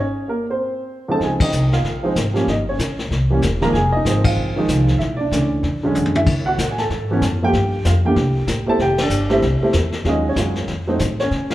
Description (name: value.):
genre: jazz piano trio.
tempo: 190 BPM.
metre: 4/4.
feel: swing 61% on 8ths.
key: unclear.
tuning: A4 = 440 Hz.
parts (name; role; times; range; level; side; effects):
warm baby grand piano; melody; 0.0-11.5 s; Db2 to Bb5; -19 LUFS; right 1 dB; none.
upright bass; bass; 1.2-11.5 s; E1 to C#3; -21 LUFS; equal; none.
vintage brush drum kit; drums; 1.2-11.5 s; brushed snare drum, crash cymbal, hi-hat, kick drum, ride cymbal, snare drum, toms; -24 LUFS; left 2 dB; none.
room: wet large studio reverb, RT60 1.4 s.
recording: heard from further back in the room.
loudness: -16 LUFS.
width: side -15 dB against mid.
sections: 0.0-1.2 A section; 1.2-11.3 B section.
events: break 0.0-1.2; band accent 1.4, 4.2, 9.0; drum fill 6.0-6.3.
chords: 0.0 Bbmadd9; 0.6 N.C.; 1.2 Dbmaj9; 2.5 Gdim; 3.1 C7; 3.7 Fm7; 5.0 Cbm11; 5.6 E13; 6.3 A6; 7.5 G7(no3); 8.2 C5; 8.8 Fmaj7sus2; 10.1 Ebm11; 10.7 F.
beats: 0.26 0.58 0.90 | 1.21 1.53 1.84 2.16 | 2.48 2.79 3.11 3.42 | 3.74 4.05 4.37 4.69 | 5.00 5.32 5.63 5.95 | 6.27 6.58 6.90 7.22 | 7.53 7.85 8.16 8.48 | 8.80 9.11 9.43 9.75 | 10.06 10.38 10.70 11.01 | 11.33.